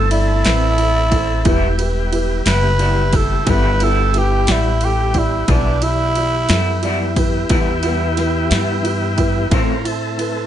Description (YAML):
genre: slow blues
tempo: 60 BPM (dotted quarters)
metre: 12/8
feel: straight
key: E minor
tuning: A4 = 438 Hz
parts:
  - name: growling tenor saxophone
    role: melody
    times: 0.0-7.1 s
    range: D4 to B4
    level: -20 LUFS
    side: right 2 dB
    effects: plate reverb
  - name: dark grand piano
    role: accompaniment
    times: 0.0-10.4 s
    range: E4 to D5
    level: -24 LUFS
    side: right 4 dB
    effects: none
  - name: tonewheel organ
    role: sustained chords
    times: 0.0-10.5 s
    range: E3 to A#4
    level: -24 LUFS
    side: left 1 dB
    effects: slow rotary speaker
  - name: upright bass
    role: bass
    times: 0.0-10.5 s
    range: E1 to A2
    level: -19 LUFS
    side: left 1 dB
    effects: none
  - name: punchy analog drum machine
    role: drums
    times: 0.1-10.3 s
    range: kick drum, ride cymbal, snare drum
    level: -21 LUFS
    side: equal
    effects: none
  - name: electric guitar through a small old amp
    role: accompaniment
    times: 0.4-9.7 s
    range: A2 to E4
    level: -24 LUFS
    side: left 2 dB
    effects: harmonic tremolo
room: light reverb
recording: nothing above 10.9 kHz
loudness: -14 LUFS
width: side -11 dB against mid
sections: 0.0-10.5 A section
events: tenor saxophone solo 0.0-10.5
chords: 0.0 Am; 1.5 Em; 9.5 Am